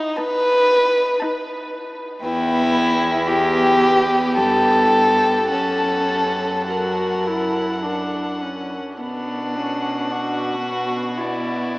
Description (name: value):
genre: classical, slow romantic movement for string quartet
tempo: 51-59 BPM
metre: 3/4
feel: rubato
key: B minor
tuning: A4 = 441 Hz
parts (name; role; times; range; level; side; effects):
- dark violin; second line; 0.0-11.8 s; D4 to B4; -19 LUFS; equal; none
- dark violin; melody; 0.2-11.8 s; D5 to A5; -27 LUFS; left 2 dB; none
- dark viola; accompaniment; 0.2-11.8 s; B3 to F#4; -25 LUFS; equal; none
- rich cello; bass; 2.2-11.8 s; E2 to B2; -27 LUFS; right 1 dB; none
room: wet huge ambient reverb, RT60 7.7 s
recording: in a vast, echoing space, small speaker sound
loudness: -17 LUFS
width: side -21 dB against mid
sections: 0.0-11.8 A section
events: none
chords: 0.0 B7; 2.2 Em; 5.5 F#; 9.0 Bm